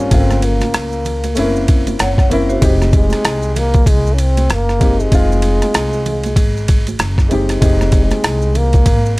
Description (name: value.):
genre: hip hop, jazz-hop.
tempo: 96 BPM.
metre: 4/4.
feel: swing 59% on 16ths.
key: F minor.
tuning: A4 = 444 Hz.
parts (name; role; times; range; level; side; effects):
warm trombone; melody; 0.0-9.2 s; Ab3 to Db4; -20 LUFS; equal; analog delay.
dark grand piano; accompaniment; 0.0-8.7 s; Db3 to A4; -19 LUFS; left 1 dB; none.
upright bass; bass; 0.0-9.2 s; F1 to Db2; -17 LUFS; equal; none.
boom bap sampler-style drum kit; drums; 0.1-9.0 s; hi-hat, kick drum, ride cymbal, rim click; -15 LUFS; equal; none.
maracas and congas; percussion; 0.1-9.2 s; none; -28 LUFS; right 4 dB; none.
vibraphone with medium mallets; second line; 2.0-2.8 s; Gb4 to Gb5; -22 LUFS; right 1 dB; analog delay.
room: little or no reverb.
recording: dry, gritty hardware recording.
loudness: -12 LUFS.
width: side -22 dB against mid.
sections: 0.0-7.6 A section; 7.6-9.2 A section.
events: none.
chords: 0.1 Gm7b5; 1.4 Gb7#11; 2.6 Fm9.